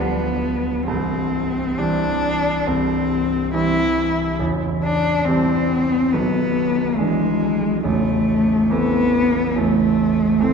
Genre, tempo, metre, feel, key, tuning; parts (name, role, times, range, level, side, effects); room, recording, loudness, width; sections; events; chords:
classical, romantic duo for cello and grand piano; 66-72 BPM; 4/4; rubato; C major; A4 = 440 Hz
rich cello; melody; 0.0-10.5 s; G#3 to E4; -19 LUFS; left 2 dB
clear grand piano; accompaniment; 0.0-10.5 s; A0 to D4; -21 LUFS; right 3 dB
wet concert hall reverb, RT60 2.5 s; dark, warm production; -17 LUFS; side -6 dB against mid
0.0-10.5 A section
0.0 G7/D; 0.9 C; 4.4 Am7; 6.1 E7/B; 7.9 Am